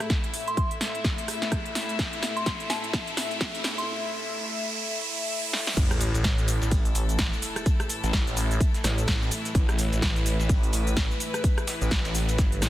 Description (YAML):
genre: bass house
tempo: 127 BPM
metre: 4/4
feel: swing 59% on 16ths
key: unclear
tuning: A4 = 440 Hz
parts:
  - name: warm studio string section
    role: sustained chords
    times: 0.0-12.7 s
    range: A2 to E5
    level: -33 LUFS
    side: left 2 dB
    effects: sidechain pumping, low-pass filter
  - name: big-room dance drum kit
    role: drums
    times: 0.0-12.7 s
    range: crash cymbal, hi-hat, rim click, shaker, snare drum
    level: -30 LUFS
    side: equal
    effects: none
  - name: riser and sub drop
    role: sound effects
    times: 0.4-7.7 s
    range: none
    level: -34 LUFS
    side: right 2 dB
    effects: none
  - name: warbly tape-like pad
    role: texture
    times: 0.0-3.9 s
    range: A4 to B5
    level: -47 LUFS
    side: right 2 dB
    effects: none
  - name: electronic kick drum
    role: drums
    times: 0.1-12.5 s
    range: none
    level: -25 LUFS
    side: equal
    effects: none
  - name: soft synth bell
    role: melody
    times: 0.5-3.8 s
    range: A5 to C6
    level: -35 LUFS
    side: equal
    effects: chorus, phaser, dub echo
  - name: phased detuned saw bass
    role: bass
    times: 5.8-12.7 s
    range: G1 to A1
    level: -26 LUFS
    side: equal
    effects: phaser, sidechain pumping
  - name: dusty soul sampler-style drum kit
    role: drums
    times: 5.8-12.7 s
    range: hi-hat, snare drum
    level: -41 LUFS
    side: equal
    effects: none
room: light reverb, digital ambience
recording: dense, heavily limited modern master, high-pass filter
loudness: -24 LUFS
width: side -14 dB against mid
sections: 0.0-5.8 A section; 5.8-12.7 B section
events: build-up 0.0-5.8; drum fill 0.0-3.9, 5.5; filter sweep 0.0-5.8; riser 0.4-5.8; drop 5.8-12.7; impact 5.8-7.7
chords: 0.0 A5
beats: | 0.10 0.57 1.05 1.52 | 1.99 2.46 2.94 3.41 | 3.88 4.35 4.83 5.30 | 5.77 6.24 6.71 7.19 | 7.66 8.13 8.61 9.08 | 9.55 10.02 10.49 10.97 | 11.44 11.91 12.38